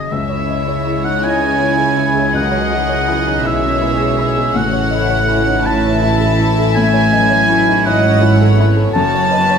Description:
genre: cinematic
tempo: 54 BPM (dotted quarters)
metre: 6/8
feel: rubato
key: C# minor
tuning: A4 = 441 Hz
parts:
  - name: warm symphonic violin section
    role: melody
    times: 0.0-9.6 s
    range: E5 to A5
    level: -24 LUFS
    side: left 4 dB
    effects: none
  - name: warm oboe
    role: second line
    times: 0.0-9.6 s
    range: D#5 to A5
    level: -18 LUFS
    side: right 2 dB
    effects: none
  - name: warm baby grand piano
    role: accompaniment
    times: 0.0-9.6 s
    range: C#2 to D#5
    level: -20 LUFS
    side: left 1 dB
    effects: none
  - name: concert harp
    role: arpeggios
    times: 0.0-9.6 s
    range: F#2 to C#5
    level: -25 LUFS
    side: left 10 dB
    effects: none
  - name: warm symphonic violin section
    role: second line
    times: 0.1-9.6 s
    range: C#4 to E5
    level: -22 LUFS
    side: left 3 dB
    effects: none
  - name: dark symphonic viola section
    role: accompaniment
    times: 0.1-9.6 s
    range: D#3 to D#5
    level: -24 LUFS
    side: right 1 dB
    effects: none
  - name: mellow French horn section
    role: sustained chords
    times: 0.1-9.6 s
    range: E3 to C#4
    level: -24 LUFS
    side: left 3 dB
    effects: none
  - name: rich symphonic double bass section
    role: bass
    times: 0.1-9.6 s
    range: F#1 to C#2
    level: -19 LUFS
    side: right 1 dB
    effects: none
  - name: warm studio cello section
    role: bass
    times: 0.1-9.6 s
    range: F#2 to C#3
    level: -22 LUFS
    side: right 4 dB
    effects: none
room: moderate scoring stage reverb, RT60 1.6 s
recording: minimal, uncompressed stereo recording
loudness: -12 LUFS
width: side -7 dB against mid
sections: 0.1-9.6 A section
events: none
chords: 0.1 C#m; 4.6 A6; 8.9 F#sus4

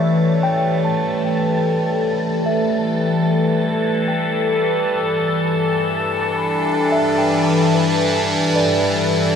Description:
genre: ambient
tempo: 74 BPM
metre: 3/4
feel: straight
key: G major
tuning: A4 = 441 Hz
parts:
  - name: evolving wavetable pad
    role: sustained chords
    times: 0.0-9.4 s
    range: G2 to B4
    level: -17 LUFS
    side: left 1 dB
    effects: phaser, built-in reverb, shimmer reverb
  - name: mellow tine electric piano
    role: arpeggios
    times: 0.0-9.4 s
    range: B4 to A5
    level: -24 LUFS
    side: equal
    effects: lush chorus, tape echo, shimmer reverb
  - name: hand-pumped harmonium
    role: drone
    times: 0.0-9.4 s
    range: G3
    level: -30 LUFS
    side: left 2 dB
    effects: none
  - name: wind-like tuned noise texture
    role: texture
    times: 0.0-9.4 s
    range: A5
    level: -28 LUFS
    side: right 3 dB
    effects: built-in reverb, shimmer reverb
room: wet huge ambient reverb, RT60 7.4 s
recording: in a vast, echoing space, cassette tape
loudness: -16 LUFS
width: side -7 dB against mid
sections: 0.0-9.4 A section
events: fade-in on harmonium 0.0-9.4; fade-in on synth texture 0.0-9.4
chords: 0.0 G69

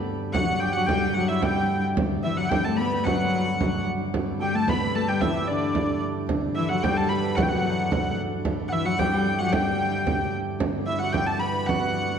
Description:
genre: medieval dance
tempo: 111 BPM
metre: 2/4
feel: straight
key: G major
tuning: A4 = 439 Hz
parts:
  - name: hammered dulcimer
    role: second line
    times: 0.0-12.2 s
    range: D4 to B4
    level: -32 LUFS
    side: right 4 dB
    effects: slapback echo
  - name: pipe organ, plenum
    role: drone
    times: 0.0-12.2 s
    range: G2 to D3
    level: -31 LUFS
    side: equal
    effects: none
  - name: rich hurdy-gurdy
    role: melody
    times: 0.3-12.2 s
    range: D5 to B5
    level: -27 LUFS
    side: left 1 dB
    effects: none
  - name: frame drum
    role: percussion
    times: 0.3-11.9 s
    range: none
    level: -28 LUFS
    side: right 3 dB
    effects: none
  - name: clear viola da gamba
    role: second line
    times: 0.4-10.3 s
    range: D3 to B3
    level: -28 LUFS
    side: left 4 dB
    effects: none
room: wet concert hall reverb, RT60 1.8 s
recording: dark, warm production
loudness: -22 LUFS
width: side -7 dB against mid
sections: 0.0-2.0 A section; 2.0-10.6 B section; 10.6-12.2 B section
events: none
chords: none

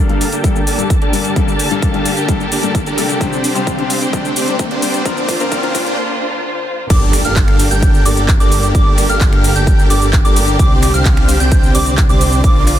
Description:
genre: EDM, festival progressive house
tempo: 130 BPM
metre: 4/4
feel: straight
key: G minor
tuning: A4 = 438 Hz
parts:
  - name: clear grand piano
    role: accompaniment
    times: 0.0-5.8 s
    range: G2 to C5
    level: -21 LUFS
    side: left 7 dB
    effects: sidechain pumping, tape echo
  - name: dark symphonic string section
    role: sustained chords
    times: 0.0-12.8 s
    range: D3 to A5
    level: -22 LUFS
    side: left 1 dB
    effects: sidechain pumping, low-pass filter
  - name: dense compressed supersaw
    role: riff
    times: 0.0-12.8 s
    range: C4 to G5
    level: -19 LUFS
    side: right 1 dB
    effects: sidechain pumping, low-pass filter, tape echo
  - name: riser and impact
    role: sound effects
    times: 1.8-8.7 s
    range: none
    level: -26 LUFS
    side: right 1 dB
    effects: none
  - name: big-room dance drum kit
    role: drums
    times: 0.1-12.8 s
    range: crash cymbal, finger snaps, handclaps, hi-hat, shaker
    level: -21 LUFS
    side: equal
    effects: none
  - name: electronic kick drum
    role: drums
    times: 0.4-12.5 s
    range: none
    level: -14 LUFS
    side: equal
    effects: none
  - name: plucky unison lead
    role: arpeggios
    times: 6.9-12.8 s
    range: D6 to G6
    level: -20 LUFS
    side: right 2 dB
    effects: sidechain pumping, tape echo
  - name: detuned saw bass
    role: bass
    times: 6.9-12.8 s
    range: G1 to C2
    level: -17 LUFS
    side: equal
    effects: sidechain pumping
room: digital ambience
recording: dense, heavily limited modern master, high-pass filter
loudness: -11 LUFS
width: side -11 dB against mid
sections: 0.0-6.9 A section; 6.9-12.8 B section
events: build-up 0.0-6.9; filter sweep on supersaw synth 0.0-6.9; filter sweep 0.0-6.9; riser 1.8-6.0; drum fill 3.2-6.0; break 6.0-6.9; drop 6.9-12.8; impact 6.9-8.7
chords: 0.0 Gmadd9; 3.2 Csus2; 5.1 Bbadd9; 6.9 Gmadd9; 10.6 Csus2

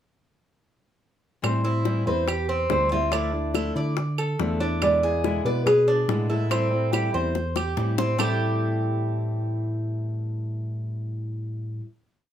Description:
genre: latin, Cuban son and guajira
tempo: 142 BPM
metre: 4/4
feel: straight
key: A minor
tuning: A4 = 440 Hz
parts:
  - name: nylon-string guitar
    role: melody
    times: 1.4-7.7 s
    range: G#4 to E5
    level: -25 LUFS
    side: right 1 dB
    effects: none
  - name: fingerpicked old ladder-braced acoustic guitar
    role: accompaniment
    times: 1.4-11.9 s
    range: A2 to E4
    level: -31 LUFS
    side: left 5 dB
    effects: none
  - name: mellow tine electric piano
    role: bass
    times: 1.4-11.8 s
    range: D2 to D3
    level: -27 LUFS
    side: equal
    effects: none
  - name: bongos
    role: percussion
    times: 1.4-8.3 s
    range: none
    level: -30 LUFS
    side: left 8 dB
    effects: none
  - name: claves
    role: percussion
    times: 1.4-8.3 s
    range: none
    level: -32 LUFS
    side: right 10 dB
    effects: none
  - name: Cuban tres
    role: arpeggios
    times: 1.6-11.8 s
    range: A3 to D5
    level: -29 LUFS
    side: right 2 dB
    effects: none
room: light reverb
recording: none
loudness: -22 LUFS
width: side -10 dB against mid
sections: 1.4-8.2 A section; 8.2-11.6 final chord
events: drum fill 7.4-8.2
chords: 1.4 Am7; 3.1 Dmadd9; 4.8 E7; 6.5 Am7

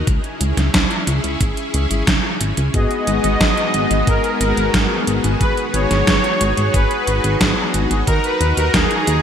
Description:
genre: synthwave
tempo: 90 BPM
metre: 4/4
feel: straight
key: G# minor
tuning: A4 = 441 Hz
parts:
  - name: string machine, full ensemble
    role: sustained chords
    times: 0.0-9.2 s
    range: G#3 to A#5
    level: -24 LUFS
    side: left 1 dB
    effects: ensemble chorus, sidechain pumping
  - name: chorused synth bass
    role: bass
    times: 0.0-9.2 s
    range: G#1 to D#2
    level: -20 LUFS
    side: equal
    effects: sidechain pumping
  - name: electronic kick drum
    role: drums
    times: 0.1-8.9 s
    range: none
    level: -20 LUFS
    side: equal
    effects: none
  - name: gated 80s digital drum machine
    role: drums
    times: 0.1-9.2 s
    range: hi-hat, snare drum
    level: -20 LUFS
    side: right 1 dB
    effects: gated reverb, gated reverb snare, overdrive
  - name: soft supersaw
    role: melody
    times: 2.7-9.2 s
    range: G#4 to D#5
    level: -20 LUFS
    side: equal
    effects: none
  - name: analog synth brass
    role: stabs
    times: 2.7-9.2 s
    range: B3 to A#5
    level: -24 LUFS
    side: left 2 dB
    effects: chorus
room: moderate lush hall reverb, RT60 2.9 s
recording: bright 1980s-style digital production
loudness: -15 LUFS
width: side -8 dB against mid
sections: 0.0-9.2 A section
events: none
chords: 0.1 C#m; 2.7 G#m7; 8.1 D#m

